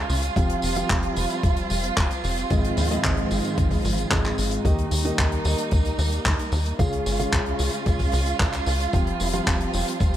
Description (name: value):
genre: italo disco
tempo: 112 BPM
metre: 4/4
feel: straight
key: F minor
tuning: A4 = 440 Hz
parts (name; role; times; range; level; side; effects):
- dark chamber string section; sustained chords; 0.0-10.2 s; Eb3 to F4; -28 LUFS; right 3 dB; none
- dark grand piano; stabs; 0.0-10.2 s; Ab2 to F5; -28 LUFS; equal; ping-pong delay
- tight sequencer bass; bass; 0.0-10.2 s; F1 to Eb2; -26 LUFS; equal; none
- damped 70s drum kit; drums; 0.1-10.2 s; handclaps, hi-hat, tambourine; -28 LUFS; left 1 dB; small room ambience
- electronic kick drum; drums; 0.4-10.1 s; none; -24 LUFS; equal; small room ambience
room: studio reverb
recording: none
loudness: -21 LUFS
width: side -12 dB against mid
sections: 0.0-10.2 A section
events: none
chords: 0.4 Fsus2; 2.5 Ab6; 4.6 Eb; 6.8 Db; 8.9 Fsus2